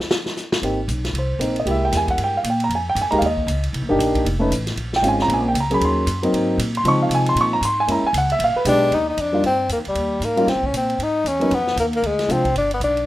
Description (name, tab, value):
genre	jazz, small-group swing and bop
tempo	231 BPM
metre	4/4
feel	swing 60% on 8ths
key	Ab major, Eb major from 8.9 s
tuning	A4 = 440 Hz
part	vintage drum kit	drums	0.0-13.0 s	hi-hat, kick drum, ride cymbal, snare drum	-28 LUFS	equal	none
part	dark grand piano	accompaniment	0.6-12.4 s	F3 to Db6	-19 LUFS	right 1 dB	plate reverb
part	upright bass	bass	0.6-13.1 s	F1 to Db3	-24 LUFS	equal	none
part	breathy tenor saxophone	melody	8.7-13.1 s	G3 to Eb4	-19 LUFS	left 2 dB	plate reverb
room	moderate studio reverb, RT60 0.6 s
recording	rough home demo mix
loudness	-17 LUFS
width	side -15 dB against mid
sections	0.6-8.9 A section; 8.9-13.1 B section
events	none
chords	0.0 N.C.; 0.6 Abmaj7; 1.7 C7b13; 2.7 Fm11; 3.7 Cm9 (rootless); 4.3 Faug7; 4.8 Bbm9; 5.8 Ebm7; 6.3 Ab9; 6.8 Dbmaj9; 7.9 Gb9; 8.4 Bb7b9; 8.9 Ebmaj9; 10.0 Eb7; 11.0 Abmadd11; 12.0 Dm7b5; 12.6 G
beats	0.11 0.37 | 0.63 0.89 1.15 1.41 | 1.67 1.92 2.18 2.44 | 2.70 2.96 3.22 3.48 | 3.74 4.00 4.26 4.52 | 4.78 5.04 5.29 5.55 | 5.81 6.07 6.33 6.59 | 6.85 7.11 7.37 7.62 | 7.88 8.14 8.40 8.66 | 8.92 9.18 9.44 9.70 | 9.96 10.22 10.48 10.74 | 10.99 11.26 11.51 11.77 | 12.03 12.29 12.55 12.81